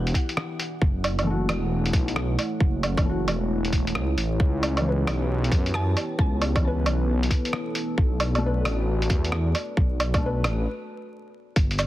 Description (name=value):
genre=future garage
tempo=134 BPM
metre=4/4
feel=swing 64% on 16ths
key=B minor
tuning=A4 = 436 Hz
part: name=mallet-like synth pluck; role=melody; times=0.0-0.3, 5.8-6.0 s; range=F#5 to A5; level=-38 LUFS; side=right 1 dB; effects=chorus, tape echo
part: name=felt-muted upright piano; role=accompaniment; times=0.0-10.7 s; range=E3 to B4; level=-32 LUFS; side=left 2 dB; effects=sidechain pumping, analog delay
part: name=deep dark ambient pad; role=sustained chords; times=0.0-11.9 s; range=A3 to F#5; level=-31 LUFS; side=equal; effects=chorus, built-in reverb, sidechain pumping
part: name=swelling detuned saw bass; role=bass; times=0.0-11.9 s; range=E1 to F#2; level=-25 LUFS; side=equal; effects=sidechain pumping
part: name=electronic kick drum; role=drums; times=0.1-11.7 s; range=none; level=-22 LUFS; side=equal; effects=none
part: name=lo-fi sampler-style drum kit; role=drums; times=0.1-11.9 s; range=cabasa, hi-hat, rim click, woodblock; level=-28 LUFS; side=right 1 dB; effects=soft clipping on snare
room=light reverb, digital ambience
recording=dense, heavily limited modern master, vinyl crackle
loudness=-22 LUFS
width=side -15 dB against mid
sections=0.0-11.6 A section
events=filter sweep on felt piano 0.0-11.6; break 10.7-11.6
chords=0.0 G6; 0.8 F#m7; 4.4 C#m7b5; 8.0 Bm7